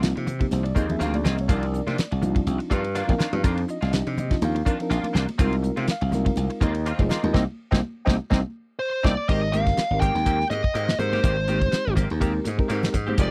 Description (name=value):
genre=electric jazz fusion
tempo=123 BPM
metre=4/4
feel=swing 55% on 16ths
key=unclear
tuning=A4 = 440 Hz
part: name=reed electric piano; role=accompaniment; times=0.0-13.3 s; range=F3 to G5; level=-31 LUFS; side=equal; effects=fast tremolo
part: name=direct-recorded clean electric guitar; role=stabs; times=0.0-13.3 s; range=Eb3 to G4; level=-35 LUFS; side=equal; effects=ensemble chorus
part: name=slap bass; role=bass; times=0.0-13.3 s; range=F1 to C3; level=-28 LUFS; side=equal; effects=none
part: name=damped 70s drum kit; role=drums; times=0.0-13.3 s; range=crash cymbal, hi-hat, kick drum, ride cymbal, snare drum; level=-26 LUFS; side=equal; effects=none
part: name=congas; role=percussion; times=0.3-13.2 s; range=none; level=-35 LUFS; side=equal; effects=none
part: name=smooth overdriven lead guitar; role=melody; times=8.8-13.3 s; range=C5 to G5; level=-28 LUFS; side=equal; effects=none
room=little or no reverb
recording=dry, close 1970s-style studio recording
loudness=-24 LUFS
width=mono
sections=0.0-9.3 A section; 9.3-13.3 B section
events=band accent 7.3-9.3; drum fill 8.8-9.3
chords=0.0 Ab69; 1.5 Cm11; 5.4 Ab69/C; 7.3 Cm7; 9.3 Abmaj9